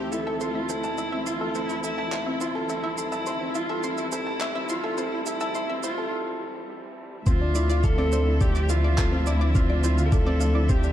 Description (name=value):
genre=piano and strings electronica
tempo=105 BPM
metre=4/4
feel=straight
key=D minor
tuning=A4 = 440 Hz
part: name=rich viola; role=melody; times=0.0-10.9 s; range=E4 to Bb4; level=-31 LUFS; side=right 1 dB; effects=none
part: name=rich symphonic string section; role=sustained chords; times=0.0-10.9 s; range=D3 to E5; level=-35 LUFS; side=right 1 dB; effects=none
part: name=clear upright piano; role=riff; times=0.0-10.9 s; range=C4 to A5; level=-29 LUFS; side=left 1 dB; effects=tape echo
part: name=dark detuned saw bass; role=bass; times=0.0-10.9 s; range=D2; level=-25 LUFS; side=equal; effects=sidechain pumping
part: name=analog pluck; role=arpeggios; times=0.1-10.8 s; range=C5 to C6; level=-36 LUFS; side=left 1 dB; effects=chorus, sidechain pumping, tape echo
part: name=electronic shaker and handclaps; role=drums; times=0.1-10.9 s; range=none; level=-36 LUFS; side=right 3 dB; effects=none
part: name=electronic kick drum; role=drums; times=7.3-10.8 s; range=none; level=-23 LUFS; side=equal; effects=none
room=moderate scoring stage reverb, RT60 2.0 s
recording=dark, warm production, high-pass filter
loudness=-22 LUFS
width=side -11 dB against mid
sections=0.0-7.3 A section; 7.3-10.9 B section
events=build-up 0.0-7.3; break 6.1-7.3; drop 7.3-10.9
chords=0.0 Am/D; 7.3 Dm9